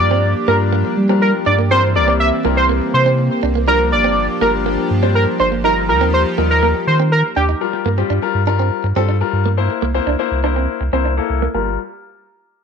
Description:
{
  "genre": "pop",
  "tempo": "122 BPM",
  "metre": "4/4",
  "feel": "straight",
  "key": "G minor",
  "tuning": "A4 = 440 Hz",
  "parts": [
    { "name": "octave-doubled lead", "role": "melody", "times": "0.0-7.4 s", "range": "G4 to E5", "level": "-16 LUFS", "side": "right 1 dB", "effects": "chorus, tape echo" },
    { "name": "clear baby grand piano", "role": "accompaniment", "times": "0.0-11.8 s", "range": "G3 to C5", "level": "-21 LUFS", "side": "left 11 dB", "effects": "low-pass filter" },
    { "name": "chorused pulse-width pad", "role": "sustained chords", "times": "0.0-7.6 s", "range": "E3 to G4", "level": "-22 LUFS", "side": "right 1 dB", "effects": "none" },
    { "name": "warm sub bass", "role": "bass", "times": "0.0-11.8 s", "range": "G1 to G3", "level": "-18 LUFS", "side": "equal", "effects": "none" },
    { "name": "direct-recorded clean electric guitar", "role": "riff", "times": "0.1-11.7 s", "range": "Bb3 to Eb4", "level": "-23 LUFS", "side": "right 15 dB", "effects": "lush chorus, low-pass filter" }
  ],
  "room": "moderate spring reverb, RT60 1.3 s",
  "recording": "1960s-style stereo with parts hard left and right",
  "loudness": "-14 LUFS",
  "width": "side -6 dB against mid",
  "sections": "0.0-7.6 A section; 7.6-11.5 B section; 11.5-12.6 C section",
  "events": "drop 0.0-7.6",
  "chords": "0.0 Gm7; 1.7 C7; 3.7 Gm7; 5.6 Ebadd9; 7.6 Gm7; 9.6 C7; 11.5 Gm7",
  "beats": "0.23 0.72 1.22 | 1.71 2.20 2.69 3.18 | 3.68 4.17 4.66 5.15 | 5.64 6.13 6.63 7.12 | 7.61 8.10 8.59 9.09 | 9.58 10.07 10.56 11.05 | 11.54"
}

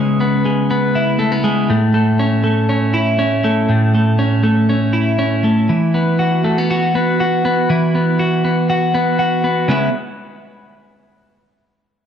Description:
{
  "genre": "indie pop",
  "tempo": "120 BPM",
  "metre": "4/4",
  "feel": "straight",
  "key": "C# minor",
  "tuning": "A4 = 440 Hz",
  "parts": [
    { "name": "twelve-string electric guitar", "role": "solo", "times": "0.0-9.9 s", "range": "A2 to F#4", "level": "-13 LUFS", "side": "equal", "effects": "spring reverb" }
  ],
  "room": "light reverb",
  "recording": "dry, close 1970s-style studio recording",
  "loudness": "-13 LUFS",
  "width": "side -8 dB against mid",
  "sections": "0.0-5.7 A section; 5.7-9.7 B section; 9.7-11.7 C section",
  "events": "none",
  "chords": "0.0 C#m7; 1.7 A; 5.7 Esus2; 9.7 C#m7",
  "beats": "0.20 0.69 1.19 | 1.69 2.19 2.69 3.19 | 3.69 4.18 4.68 5.18 | 5.68 6.18 6.68 7.18 | 7.68 8.18 8.68 9.18 | 9.68"
}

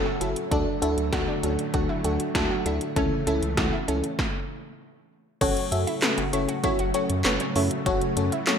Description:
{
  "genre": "synth-pop",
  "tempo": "98 BPM",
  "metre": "4/4",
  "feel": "straight",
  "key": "F# minor",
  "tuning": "A4 = 440 Hz",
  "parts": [
    { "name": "FM electric piano with soft pad layer", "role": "accompaniment", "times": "0.0-8.6 s", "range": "C#4 to E5", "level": "-27 LUFS", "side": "left 2 dB", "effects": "chorus" },
    { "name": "string machine, cellos", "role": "sustained chords", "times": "0.0-8.6 s", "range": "C#3 to A3", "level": "-32 LUFS", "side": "equal", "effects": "ensemble chorus" },
    { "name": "analog pluck", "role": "arpeggios", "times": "0.0-8.6 s", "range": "B3 to F#4", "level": "-33 LUFS", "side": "right 3 dB", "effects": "chorus, ping-pong delay" },
    { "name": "round analog bass", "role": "bass", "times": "0.0-8.3 s", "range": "F#1 to F#2", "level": "-29 LUFS", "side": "equal", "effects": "none" },
    { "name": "80s electronic pad drums", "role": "drums", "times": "0.2-8.6 s", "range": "crash cymbal, handclaps, hi-hat, kick drum, snare drum", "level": "-28 LUFS", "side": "equal", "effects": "none" }
  ],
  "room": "moderate plate reverb, RT60 1.8 s",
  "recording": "bright 1980s-style digital production",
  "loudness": "-23 LUFS",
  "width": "side -7 dB against mid",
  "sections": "0.0-5.4 A section; 5.4-8.6 B section",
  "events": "stop 4.2-5.4",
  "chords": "0.0 F#m; 0.5 D; 3.0 A/C#; 5.4 F#m",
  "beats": "| 0.52 1.13 1.74 2.35 | 2.96 3.58 4.19 4.80 | 5.41 6.03 6.64 7.25 | 7.86 8.47"
}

